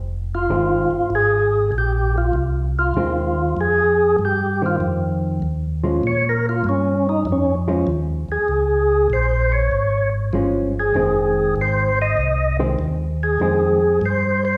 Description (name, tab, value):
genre	soul jazz organ trio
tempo	98 BPM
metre	4/4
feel	swing 68% on 8ths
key	F minor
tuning	A4 = 440 Hz
part	mellow tonewheel organ	bass	0.0-14.6 s	F1 to Bb2	-24 LUFS	equal	slow rotary speaker
part	percussive tonewheel organ	melody	0.3-14.6 s	Db4 to Eb5	-21 LUFS	equal	overdrive, chorus vibrato, slow rotary speaker
part	hollow-body jazz guitar	accompaniment	0.5-13.8 s	Eb3 to Db4	-26 LUFS	equal	none
room	wet recital hall reverb, RT60 1.4 s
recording	recorded in a church or concert hall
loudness	-19 LUFS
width	mono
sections	0.0-14.6 A section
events	tonewheel organ solo 0.0-14.6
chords	0.0 Fm7; 6.0 Bbm7; 10.9 Fm7